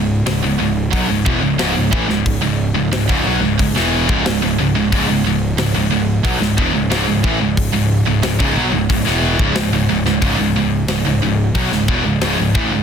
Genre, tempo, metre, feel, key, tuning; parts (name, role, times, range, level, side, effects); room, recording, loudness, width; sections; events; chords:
heavy metal; 90 BPM; 4/4; straight; C# minor; A4 = 440 Hz
heavy high-gain guitar; riff; 0.0-12.8 s; C#2 to F#3; -18 LUFS; right 8 dB; distortion
scooped high-gain guitar; riff; 0.0-12.8 s; C#2 to F#3; -19 LUFS; left 11 dB; distortion
fuzz picked electric bass; bass; 0.0-12.8 s; C#1 to B1; -21 LUFS; left 1 dB; overdrive
tight metal drum kit; drums; 0.3-12.7 s; hi-hat, kick drum, snare drum; -21 LUFS; left 1 dB
light reverb; dense, heavily limited modern master; -14 LUFS; side -7 dB against mid
0.0-12.8 A section
0.0 C#m